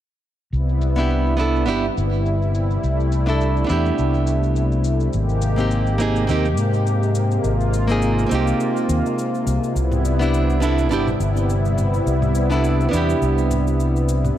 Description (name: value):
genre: sunset chillout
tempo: 104 BPM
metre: 4/4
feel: swing 56% on 16ths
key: unclear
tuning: A4 = 440 Hz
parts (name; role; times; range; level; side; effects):
- lush unison pad; sustained chords; 0.5-14.3 s; C3 to G4; -23 LUFS; left 1 dB; chorus
- fingered electric bass; bass; 0.5-14.3 s; G1 to Ab2; -20 LUFS; equal; none
- electronic shaker and toms; drums; 0.5-14.3 s; none; -32 LUFS; equal; low-pass filter on perc, small room ambience, low-pass filter on toms
- nylon-string guitar; accompaniment; 1.0-14.4 s; Bb3 to A4; -22 LUFS; moving between left 3 dB and right 5 dB; auto-pan, digital delay
room: light reverb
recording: none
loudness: -17 LUFS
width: side -12 dB against mid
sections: 0.5-14.4 A section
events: filter sweep on drum 0.5-14.4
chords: 0.5 Cmaj7; 5.1 Abmaj9; 9.8 Cmaj7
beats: | 0.53 1.10 1.68 2.26 | 2.83 3.41 3.99 4.56 | 5.14 5.72 6.29 6.87 | 7.45 8.03 8.60 9.18 | 9.76 10.33 10.91 11.49 | 12.06 12.64 13.22 13.79 | 14.37